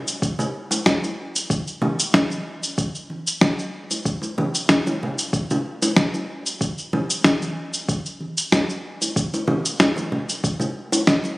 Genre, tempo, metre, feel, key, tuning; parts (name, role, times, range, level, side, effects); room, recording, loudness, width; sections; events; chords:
downtempo; 94 BPM; 4/4; straight
electronic shaker and snare drum; drums; 0.1-11.4 s; -21 LUFS; equal
electronic kick drum; drums; 0.2-11.2 s; -25 LUFS; equal; overdrive
congas and bongos; percussion; 0.4-11.4 s; -25 LUFS; equal
moderate lush hall reverb, RT60 2.2 s; recorded on a phone in the room, studio ambience; -20 LUFS; side -22 dB against mid
0.0-11.4 A section